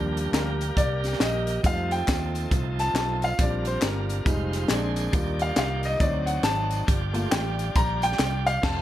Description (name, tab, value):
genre	uptempo gospel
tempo	137 BPM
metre	4/4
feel	swing 61% on 8ths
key	unclear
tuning	A4 = 442 Hz
part	warm baby grand piano	accompaniment	0.0-8.8 s	F3 to Bb5	-28 LUFS	left 1 dB	none
part	bright tonewheel organ	sustained chords	0.0-8.8 s	Eb3 to D5	-34 LUFS	right 4 dB	slow rotary speaker, overdrive
part	warm French horn section	sustained chords	0.0-8.8 s	D3 to D5	-37 LUFS	right 1 dB	stereo widening
part	fingered electric bass	bass	0.0-8.8 s	F1 to F2	-28 LUFS	equal	none
part	crisp fusion drum kit	drums	0.2-8.8 s	crash cymbal, hi-hat, kick drum, snare drum	-27 LUFS	equal	none
part	tambourine and handclaps	percussion	0.2-8.5 s	none	-38 LUFS	left 4 dB	none
room	light reverb, small room ambience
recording	none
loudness	-22 LUFS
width	side -13 dB against mid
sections	0.0-8.8 A section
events	grand piano solo 0.0-8.8; band accent 8.6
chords	0.0 Ebmaj7; 1.6 F7; 3.4 Bb6; 4.3 Fm7; 4.7 Bb9; 5.1 Ebmaj7; 6.0 D7b9; 6.9 Gm7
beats	0.34 0.77 1.21 | 1.65 2.08 2.52 2.96 | 3.39 3.83 4.26 4.70 | 5.14 5.58 6.01 6.45 | 6.89 7.32 7.76 8.20 | 8.63